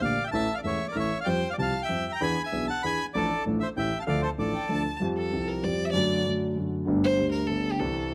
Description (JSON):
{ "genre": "tango", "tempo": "193 BPM", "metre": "3/4", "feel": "rubato", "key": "D minor, F major from 5.0 s", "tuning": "A4 = 439 Hz", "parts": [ { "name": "bandoneon", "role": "melody", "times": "0.0-4.8 s", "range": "A4 to B5", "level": "-31 LUFS", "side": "equal", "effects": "none" }, { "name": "dark concert grand piano", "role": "accompaniment", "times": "0.0-8.1 s", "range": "E1 to A4", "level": "-30 LUFS", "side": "equal", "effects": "none" }, { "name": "warm violin", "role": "second line", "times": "4.5-8.1 s", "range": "G4 to A5", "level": "-32 LUFS", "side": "equal", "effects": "none" } ], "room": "light reverb", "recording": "close, detailed microphones", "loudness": "-28 LUFS", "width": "mono", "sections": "0.0-5.0 A section; 5.0-8.1 B section", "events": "violin solo 5.0-8.1", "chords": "0.3 A; 1.3 Fsus2; 2.2 E7; 3.1 Dm/A; 3.8 A7; 4.1 Dm; 5.0 Fsus2; 5.9 D/F#; 6.9 Gsus2" }